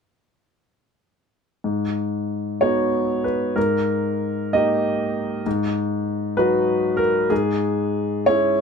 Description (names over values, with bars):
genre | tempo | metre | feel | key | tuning
neoclassical minimalist piano | 64 BPM (dotted quarters) | 6/8 | rubato | G# minor | A4 = 438 Hz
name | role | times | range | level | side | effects
warm concert grand piano | solo | 1.6-8.6 s | G#2 to D#5 | -19 LUFS | left 1 dB | none
room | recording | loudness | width
little or no reverb | close, detailed microphones | -19 LUFS | side -6 dB against mid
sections
1.7-8.6 A section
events
none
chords
1.7 G#m7; 3.6 D#/G#; 5.5 B/G#; 7.3 C#m/G#